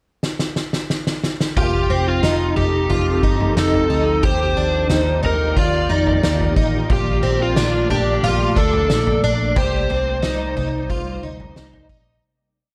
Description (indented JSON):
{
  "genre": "dream pop",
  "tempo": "90 BPM",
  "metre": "4/4",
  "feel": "straight",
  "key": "C dorian",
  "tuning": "A4 = 440 Hz",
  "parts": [
    { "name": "oversized low-tuned drum kit", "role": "drums", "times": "0.2-12.1 s", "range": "kick drum, snare drum, toms", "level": "-24 LUFS", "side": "equal", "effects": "none" },
    { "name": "overdriven slide guitar", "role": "melody", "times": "1.6-11.9 s", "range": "F4 to D5", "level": "-24 LUFS", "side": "equal", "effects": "tape echo" },
    { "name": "ethereal airy pad", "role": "sustained chords", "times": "2.1-12.2 s", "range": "C3 to D5", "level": "-28 LUFS", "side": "equal", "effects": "ensemble chorus, built-in reverb" },
    { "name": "picked plugged-in twelve-string acoustic guitar", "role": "arpeggios", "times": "1.6-12.2 s", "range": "C4 to G4", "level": "-25 LUFS", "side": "equal", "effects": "ensemble chorus, tape echo" },
    { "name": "vintage muted picked electric bass", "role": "bass", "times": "1.6-12.2 s", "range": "F1 to F2", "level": "-24 LUFS", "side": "equal", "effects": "none" }
  ],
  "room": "moderate plate reverb, RT60 1.4 s, studio ambience",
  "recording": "dark, warm production",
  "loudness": "-18 LUFS",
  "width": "mono",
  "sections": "0.0-1.6 pickup bar; 1.6-12.2 A section",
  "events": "drum fill 0.2-1.6; fade-out 9.6-12.2",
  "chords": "0.0 N.C.; 1.6 F7; 4.2 Ebmaj7; 6.9 Bbmaj7; 9.6 Cm7"
}